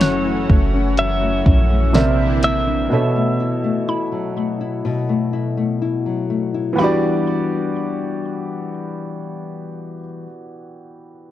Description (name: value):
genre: contemporary R&B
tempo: 62 BPM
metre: 4/4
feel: straight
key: E dorian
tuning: A4 = 440 Hz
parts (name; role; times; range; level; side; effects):
- direct-recorded clean electric guitar; melody; 0.0-5.8 s; C#5 to E5; -24 LUFS; equal; warbly pitch drift, tape echo
- warm grand piano; accompaniment; 0.0-11.3 s; B2 to E5; -23 LUFS; right 3 dB; none
- lush unison pad; sustained chords; 0.0-2.9 s; D3 to F#4; -26 LUFS; right 1 dB; chorus
- nylon-string guitar; arpeggios; 0.0-10.3 s; F#2 to F#4; -22 LUFS; left 6 dB; none
- soft 808-style bass; bass; 0.0-2.9 s; F#1 to A#1; -19 LUFS; equal; none
- smooth R&B drum kit; drums; 0.0-2.7 s; hi-hat, kick drum, snare drum; -16 LUFS; equal; none
- mallet-like synth pluck; texture; 0.0-10.0 s; B5 to F#6; -31 LUFS; right 4 dB; chorus, tape echo
room: little or no reverb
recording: worn, warbling old tape, cassette tape, warbly pitch drift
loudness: -16 LUFS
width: side -12 dB against mid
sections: 0.0-6.8 A section; 6.8-10.7 B section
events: none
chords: 0.0 F#m7; 1.9 C9; 2.9 B7sus4; 6.8 Em9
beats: 0.01 0.98 1.94 | 2.91 3.88 4.85 5.82 | 6.78 7.75 8.72 9.69